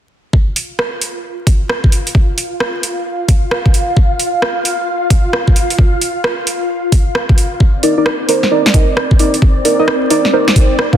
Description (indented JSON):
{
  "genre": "UK garage, two-step garage",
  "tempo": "132 BPM",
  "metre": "4/4",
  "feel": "swing 64% on 16ths",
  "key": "C minor",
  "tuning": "A4 = 442 Hz",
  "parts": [
    { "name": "soft string machine", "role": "sustained chords", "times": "1.1-11.0 s", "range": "C4 to F5", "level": "-20 LUFS", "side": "left 1 dB", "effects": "phaser, ensemble chorus, sidechain pumping" },
    { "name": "electronic kick drum", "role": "drums", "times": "0.3-11.0 s", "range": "none", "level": "-10 LUFS", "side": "equal", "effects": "overdrive, studio reverb" },
    { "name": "garage drum kit", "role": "drums", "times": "0.6-10.9 s", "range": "hi-hat, rim click, snare drum", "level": "-17 LUFS", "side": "right 1 dB", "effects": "overdrive, studio reverb" },
    { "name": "deep mellow chord stab", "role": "stabs", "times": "7.8-11.0 s", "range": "Eb4 to F5", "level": "-13 LUFS", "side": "right 1 dB", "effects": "chorus, vintage 12-bit sampler grit, tape echo" }
  ],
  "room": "light reverb, digital ambience",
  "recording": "dense, heavily limited modern master, vinyl crackle",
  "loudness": "-11 LUFS",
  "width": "side -10 dB against mid",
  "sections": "0.3-11.0 A section",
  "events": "none",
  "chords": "0.3 N.C.; 7.6 Cm9"
}